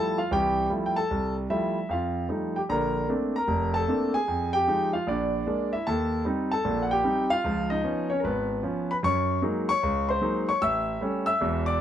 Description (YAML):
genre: solo jazz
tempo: 151 BPM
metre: 4/4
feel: swing 64% on 8ths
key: unclear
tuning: A4 = 440 Hz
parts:
  - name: clear concert grand piano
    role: solo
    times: 0.0-11.8 s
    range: E1 to E6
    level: -24 LUFS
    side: equal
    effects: none
room: light reverb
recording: none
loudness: -24 LUFS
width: side -10 dB against mid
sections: 0.0-2.7 A section; 2.7-11.8 B section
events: none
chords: 0.0 Fmaj9; 1.9 F9; 2.7 Bbmaj9; 4.3 Fm7; 5.1 Bb7; 5.9 Eb6; 7.4 Db7; 9.0 Gb69; 10.6 A7